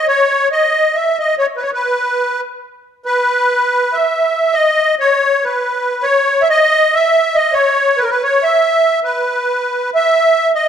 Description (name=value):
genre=balkan folk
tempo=280 BPM (eighths)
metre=7/8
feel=straight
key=unclear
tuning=A4 = 440 Hz
part: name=musette accordion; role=solo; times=0.0-10.7 s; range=A#4 to E5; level=-12 LUFS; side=equal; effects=none
room=wet recital hall reverb, RT60 1.4 s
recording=dark, warm production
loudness=-12 LUFS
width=side -8 dB against mid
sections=0.0-3.0 A section; 3.0-10.7 B section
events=none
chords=none